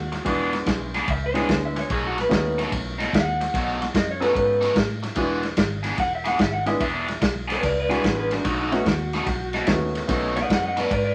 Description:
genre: electric blues shuffle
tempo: 146 BPM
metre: 4/4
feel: swing 66% on 8ths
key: B mixolydian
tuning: A4 = 436 Hz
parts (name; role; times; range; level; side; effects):
- electric guitar through a small old amp; second line; 0.0-11.1 s; D4 to F#5; -28 LUFS; equal; none
- vintage muted fingered electric bass; bass; 0.0-11.1 s; E1 to A2; -33 LUFS; equal; none
- overdriven electric guitar; riff; 0.1-10.9 s; B2 to G#4; -31 LUFS; equal; phaser
- vintage drum kit; drums; 0.1-11.0 s; kick drum, ride cymbal, snare drum; -28 LUFS; equal; none
- clear upright piano; accompaniment; 0.2-10.7 s; G#3 to A4; -29 LUFS; equal; none
room: moderate small room reverb, RT60 0.5 s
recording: vinyl crackle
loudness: -23 LUFS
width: mono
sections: 0.0-11.1 A section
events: clean electric guitar solo 0.0-11.1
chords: 0.3 E7; 1.9 B7; 5.2 E7; 8.4 B7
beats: | 0.26 0.67 1.08 1.49 | 1.90 2.31 2.72 3.13 | 3.54 3.94 4.35 4.76 | 5.17 5.58 5.99 6.40 | 6.81 7.22 7.63 8.04 | 8.45 8.86 9.27 9.68 | 10.09 10.50 10.91

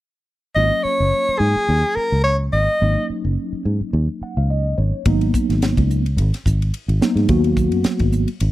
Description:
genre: electric jazz fusion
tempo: 107 BPM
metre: 4/4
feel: swing 55% on 16ths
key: G# minor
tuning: A4 = 436 Hz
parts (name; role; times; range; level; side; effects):
- clear soprano saxophone; melody; 0.5-3.0 s; G#4 to D#5; -18 LUFS; equal; slapback echo
- mellow tine electric piano; accompaniment; 0.6-8.3 s; F#3 to F#5; -23 LUFS; equal; medium stereo tremolo, wide subtle chorus
- fingered electric bass; bass; 0.6-8.5 s; F#1 to G#2; -18 LUFS; equal; none
- crisp fusion drum kit; drums; 5.1-8.5 s; hi-hat, kick drum, ride cymbal, snare drum; -22 LUFS; equal; none
room: small room ambience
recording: dry, close 1970s-style studio recording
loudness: -16 LUFS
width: side -16 dB against mid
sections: 0.6-5.1 A section; 5.1-8.5 B section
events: tine electric piano fill 3.9-5.1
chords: 0.6 G#13sus4; 5.1 G#m9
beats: | 0.56 1.12 1.69 2.25 | 2.81 3.37 3.93 4.49 | 5.05 5.61 6.17 6.73 | 7.29 7.85 8.41

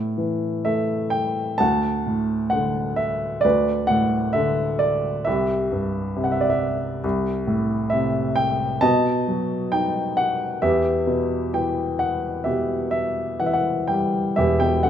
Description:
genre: classical, lyrical solo piano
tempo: 66 BPM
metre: 4/4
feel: uneven beats, rubato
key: E minor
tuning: A4 = 440 Hz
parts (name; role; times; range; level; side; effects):
- warm baby grand piano; solo; 0.0-14.9 s; E1 to A5; -20 LUFS; equal; none
room: light reverb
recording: minimal, uncompressed stereo recording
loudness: -20 LUFS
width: side -9 dB against mid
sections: 0.0-14.4 A section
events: none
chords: 0.0 A5; 1.6 D; 3.4 D69; 5.3 C; 7.0 Am/C; 8.8 B; 10.6 Em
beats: 0.66 1.61 2.53 | 3.44 4.36 5.27 6.16 | 7.04 7.92 8.82 9.72 | 10.62 11.53 12.46 13.41 | 14.36

